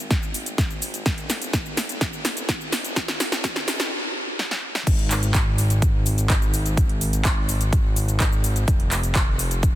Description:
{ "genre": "EDM, festival progressive house", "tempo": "126 BPM", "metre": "4/4", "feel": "straight", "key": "unclear", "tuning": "A4 = 440 Hz", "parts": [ { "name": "fat analog bass", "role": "bass", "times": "0.0-9.8 s", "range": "F1 to Ab1", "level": "-25 LUFS", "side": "equal", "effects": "sidechain pumping, high-pass filter" }, { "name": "big-room dance drum kit", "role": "drums", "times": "0.1-9.7 s", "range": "crash cymbal, handclaps, hi-hat, shaker, snare drum", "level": "-24 LUFS", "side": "equal", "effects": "none" }, { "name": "electronic kick drum", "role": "drums", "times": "0.1-9.7 s", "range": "none", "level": "-21 LUFS", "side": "equal", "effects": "none" } ], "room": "light reverb, digital ambience", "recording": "dense, heavily limited modern master, high-pass filter", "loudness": "-20 LUFS", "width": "side -14 dB against mid", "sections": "0.0-4.9 A section; 4.9-9.8 B section", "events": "build-up 0.0-4.9; drum fill 0.0-3.9, 4.4-4.9; filter sweep 0.0-4.9; stop 3.9-4.9; drop 4.9-9.8", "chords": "none" }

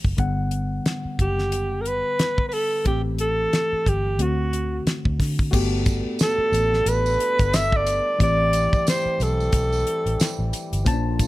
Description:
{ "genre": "lush 1970s-style soul", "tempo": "90 BPM", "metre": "4/4", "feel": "swing 58% on 16ths", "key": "G major", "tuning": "A4 = 441 Hz", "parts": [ { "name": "tine electric piano", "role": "accompaniment", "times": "0.0-11.3 s", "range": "D3 to A5", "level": "-29 LUFS", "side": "left 3 dB", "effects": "none" }, { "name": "vintage muted fingered electric bass", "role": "bass", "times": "0.0-11.3 s", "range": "F#1 to D3", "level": "-25 LUFS", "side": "equal", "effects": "none" }, { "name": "damped 70s drum kit", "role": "drums", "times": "0.0-11.3 s", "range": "crash cymbal, hi-hat, kick drum, snare drum", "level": "-23 LUFS", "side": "equal", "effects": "none" }, { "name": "breathy alto saxophone", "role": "melody", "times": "1.2-10.5 s", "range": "F#4 to E5", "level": "-22 LUFS", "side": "equal", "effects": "none" }, { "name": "mellow French horn section", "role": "sustained chords", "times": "5.5-11.3 s", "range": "D3 to A4", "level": "-33 LUFS", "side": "right 3 dB", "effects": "none" }, { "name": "tambourine", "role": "percussion", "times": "5.5-11.3 s", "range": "none", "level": "-37 LUFS", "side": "right 10 dB", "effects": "none" } ], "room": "small room ambience", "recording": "none", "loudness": "-20 LUFS", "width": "side -17 dB against mid", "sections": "0.0-5.5 A section; 5.5-11.3 B section", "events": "none", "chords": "0.2 Gmaj7; 2.9 Am7; 4.2 D7; 5.5 Gmaj9; 8.2 Am7" }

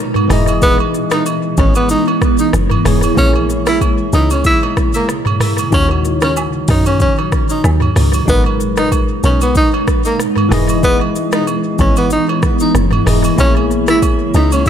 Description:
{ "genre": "afrobeats", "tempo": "94 BPM", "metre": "4/4", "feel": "swing 55% on 16ths", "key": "unclear", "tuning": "A4 = 440 Hz", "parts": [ { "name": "bell-like tine electric piano", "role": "accompaniment", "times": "0.0-14.7 s", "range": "D#3 to D#5", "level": "-20 LUFS", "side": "left 4 dB", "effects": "phaser" }, { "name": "granular cloud pad", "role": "sustained chords", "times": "0.0-14.7 s", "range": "A#2 to E4", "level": "-19 LUFS", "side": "right 2 dB", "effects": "built-in reverb" }, { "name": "afro-pop drum kit", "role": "drums", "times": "0.2-14.7 s", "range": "hi-hat, kick drum, rim click, shaker, toms", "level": "-16 LUFS", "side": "equal", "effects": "tape echo" }, { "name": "agogo bells and woodblock", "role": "percussion", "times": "0.2-14.7 s", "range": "none", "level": "-25 LUFS", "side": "right 9 dB", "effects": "none" }, { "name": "deep log drum bass", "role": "bass", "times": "0.3-14.7 s", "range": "E1 to F#2", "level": "-16 LUFS", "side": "equal", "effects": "none" }, { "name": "breathy tenor saxophone", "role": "melody", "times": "0.6-14.7 s", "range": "A#3 to E4", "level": "-18 LUFS", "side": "equal", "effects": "tape echo" } ], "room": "light reverb, digital ambience", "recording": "echo-heavy mix", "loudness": "-11 LUFS", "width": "side -9 dB against mid", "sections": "0.0-14.7 A section", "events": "none", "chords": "0.3 Emaj7; 3.2 A#m7b5; 5.7 D#m7; 8.3 G#madd9; 10.5 Emaj7; 13.4 A#m7b5" }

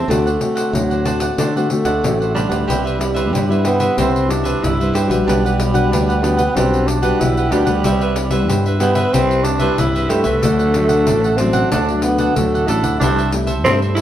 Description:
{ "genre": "samba and choro", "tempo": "93 BPM", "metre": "4/4", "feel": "straight", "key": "unclear", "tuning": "A4 = 441 Hz", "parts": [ { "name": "growling tenor saxophone", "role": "second line", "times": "0.0-14.0 s", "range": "F#3 to E4", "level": "-19 LUFS", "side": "right 1 dB", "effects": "none" }, { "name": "cavaquinho", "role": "accompaniment", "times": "0.0-14.0 s", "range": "D4 to F#5", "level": "-22 LUFS", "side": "right 3 dB", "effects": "none" }, { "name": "nylon-string guitar", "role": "accompaniment", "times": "0.0-14.0 s", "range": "G2 to F#4", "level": "-21 LUFS", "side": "left 2 dB", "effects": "none" }, { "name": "modern bright fingered electric bass", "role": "bass", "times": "0.0-14.0 s", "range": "A1 to D3", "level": "-20 LUFS", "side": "equal", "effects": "none" }, { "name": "pandeiro", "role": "percussion", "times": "0.1-14.0 s", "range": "none", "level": "-24 LUFS", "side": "left 2 dB", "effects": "none" } ], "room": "wet studio reverb, RT60 1.0 s", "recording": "band playing live in one room", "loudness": "-14 LUFS", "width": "side -11 dB against mid", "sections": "0.0-2.7 A section; 2.7-14.0 B section", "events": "tenor saxophone solo 2.7-14.0", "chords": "0.1 D7; 2.7 Cmaj7; 5.3 Gmaj7/B; 7.9 Cmaj7; 10.4 D; 13.0 C6" }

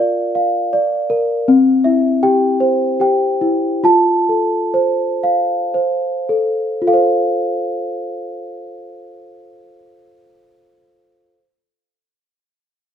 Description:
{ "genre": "children's music", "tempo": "50-81 BPM", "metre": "3/4", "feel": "rubato", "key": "F major", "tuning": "A4 = 440 Hz", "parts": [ { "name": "celesta", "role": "melody", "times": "0.0-11.4 s", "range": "C4 to A5", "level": "-14 LUFS", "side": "equal", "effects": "none" } ], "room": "light reverb", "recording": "close, detailed microphones", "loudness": "-14 LUFS", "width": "side -8 dB against mid", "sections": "0.0-6.9 A section; 6.9-10.4 B section", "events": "slowing down 1.5-6.9", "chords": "0.0 Bb; 1.5 C; 3.8 F" }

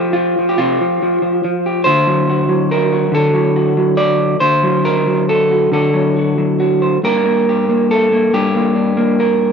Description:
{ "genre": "folk, solo fingerstyle acoustic guitar", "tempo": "47 BPM (dotted quarters)", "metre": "6/8", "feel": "rubato", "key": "unclear", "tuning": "A4 = 442 Hz", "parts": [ { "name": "electric guitar through a small old amp", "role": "solo", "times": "0.0-9.5 s", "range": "G2 to D5", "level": "-12 LUFS", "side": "equal", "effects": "none" } ], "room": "moderate studio reverb, RT60 0.8 s", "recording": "minimal, uncompressed stereo recording", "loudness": "-12 LUFS", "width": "side -6 dB against mid", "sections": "0.0-9.5 A section", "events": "none", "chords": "0.0 Csus4 (rootless); 1.8 D7; 7.0 Gm" }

